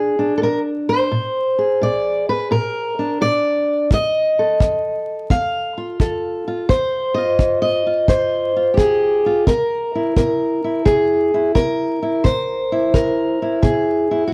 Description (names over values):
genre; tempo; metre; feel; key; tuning
acoustic country blues, solo or duo; 86 BPM; 4/4; swing 67% on 8ths; unclear; A4 = 441 Hz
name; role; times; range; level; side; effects
fingerpicked steel-string acoustic guitar; melody; 0.0-14.3 s; F2 to F5; -19 LUFS; equal; slapback echo
kick drum; drums; 3.9-13.8 s; none; -20 LUFS; equal; none
room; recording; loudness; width
small room ambience; dry, close 1970s-style studio recording, vinyl crackle; -18 LUFS; mono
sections
0.0-14.3 A section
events
none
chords
0.0 Bb7; 3.9 F7; 9.5 C7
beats
0.41 | 1.11 1.81 2.51 3.21 | 3.91 4.60 5.30 6.00 | 6.69 7.39 8.08 8.78 | 9.47 10.17 10.86 11.55 | 12.25 12.94 13.63 14.32